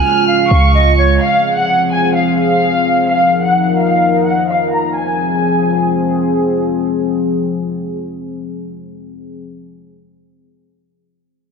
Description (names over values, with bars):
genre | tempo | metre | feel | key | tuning
hip hop | 128 BPM | 4/4 | half-time | F phrygian | A4 = 440 Hz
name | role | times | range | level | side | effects
clear studio violin section | melody | 0.0-6.3 s | F5 to F6 | -15 LUFS | equal | low-pass filter, ping-pong delay
reedy silver concert flute | second line | 0.0-1.2 s | Db5 to Ab5 | -18 LUFS | right 5 dB | ping-pong delay
dark analog pad | sustained chords | 0.0-9.4 s | Db3 to Bb4 | -16 LUFS | left 2 dB | chorus, low-pass filter
warm 808-style bass | bass | 0.5-1.2 s | Db2 | -12 LUFS | equal | none
room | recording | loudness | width
moderate lush hall reverb, RT60 2.9 s | none | -12 LUFS | side -5 dB against mid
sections
0.0-1.2 A section; 1.2-5.0 B section; 5.0-8.7 C section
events
filter sweep 1.2-5.0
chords
0.0 Db; 1.2 Fm; 3.1 Ebsus2; 5.0 Fm